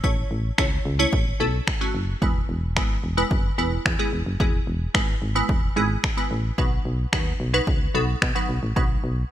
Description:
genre	dance-pop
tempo	110 BPM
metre	4/4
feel	straight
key	E major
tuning	A4 = 441 Hz
part	wavetable chord stab	accompaniment	0.0-9.1 s	F#3 to C#5	-26 LUFS	right 1 dB	phaser, sidechain pumping
part	solid FM bass	bass	0.0-9.2 s	E1 to B2	-26 LUFS	equal	sidechain pumping
part	punchy analog drum machine	drums	0.0-8.9 s	finger snaps, kick drum	-24 LUFS	equal	gated reverb
room	light reverb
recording	bright 1980s-style digital production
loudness	-21 LUFS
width	side -12 dB against mid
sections	0.0-9.3 A section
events	none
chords	0.0 A; 2.2 E; 6.6 B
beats	| 0.04 0.58 1.13 1.67 | 2.22 2.76 3.31 3.85 | 4.40 4.95 5.49 6.04 | 6.58 7.13 7.67 8.22 | 8.76

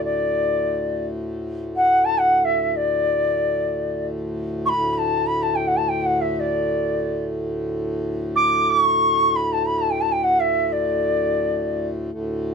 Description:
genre	indian classical, Hindustani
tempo	free time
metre	none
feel	none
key	D raga bilaval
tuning	A4 = 440 Hz
part	bright reedy bansuri	melody	0.0-11.9 s	D5 to D6	-19 LUFS	equal	none
part	hand-pumped harmonium	drone	0.0-12.5 s	D2 to A2	-26 LUFS	equal	none
room	moderate studio reverb, RT60 0.7 s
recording	none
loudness	-19 LUFS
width	side -6 dB against mid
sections	0.0-12.1 A section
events	none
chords	none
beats	free time

